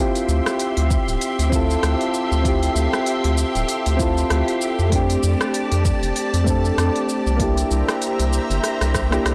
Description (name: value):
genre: sunset chillout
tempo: 97 BPM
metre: 4/4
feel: swing 57% on 16ths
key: D minor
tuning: A4 = 440 Hz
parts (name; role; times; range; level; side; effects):
- soft electric-piano-like synth keys; accompaniment; 0.0-9.3 s; A3 to A4; -25 LUFS; equal; chorus, digital delay
- soft string machine; sustained chords; 0.0-9.3 s; G4 to C6; -29 LUFS; equal; phaser, ensemble chorus
- smooth R&B drum kit; drums; 0.2-9.3 s; cabasa, hi-hat, rim click; -29 LUFS; equal; soft clipping on snare
- round analog bass; bass; 0.3-9.3 s; D1 to F2; -22 LUFS; equal; transformer saturation
- electronic kick drum; drums; 0.9-9.1 s; none; -26 LUFS; equal; overdrive
room: light reverb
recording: blown-out, overdriven recording, overdrive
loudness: -20 LUFS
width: mono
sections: 0.0-9.3 A section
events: drum fill 8.6-9.3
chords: 0.0 Dm11; 4.9 F69; 7.4 C7